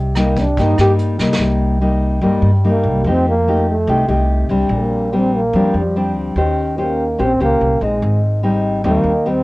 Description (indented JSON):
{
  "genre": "bossa nova",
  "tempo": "145 BPM",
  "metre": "4/4",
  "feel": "straight",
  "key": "C minor",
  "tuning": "A4 = 438 Hz",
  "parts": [
    { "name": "mellow trombone", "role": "melody", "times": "0.0-9.4 s", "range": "G3 to G4", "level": "-18 LUFS", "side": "right 1 dB", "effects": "none" },
    { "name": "nylon-string guitar", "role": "accompaniment", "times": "0.0-9.4 s", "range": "G2 to C5", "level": "-17 LUFS", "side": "left 1 dB", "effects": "none" },
    { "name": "upright bass", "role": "bass", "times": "0.0-9.4 s", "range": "Ab1 to G2", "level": "-18 LUFS", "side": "equal", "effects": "none" },
    { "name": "vintage brush drum kit", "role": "drums", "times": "0.2-1.4 s", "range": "hi-hat, kick drum, rim click, snare drum", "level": "-23 LUFS", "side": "equal", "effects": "none" }
  ],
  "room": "light reverb",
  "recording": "worn, warbling old tape, cassette tape, warbly pitch drift",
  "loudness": "-13 LUFS",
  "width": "side -20 dB against mid",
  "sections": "0.0-1.4 A section; 1.4-9.4 A section",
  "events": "trombone solo 0.0-1.4, 1.4-9.4; drum fill 1.2",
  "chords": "0.0 Cm7; 3.1 F9; 4.7 Bb69; 6.4 Eb6; 8.0 Abmaj7"
}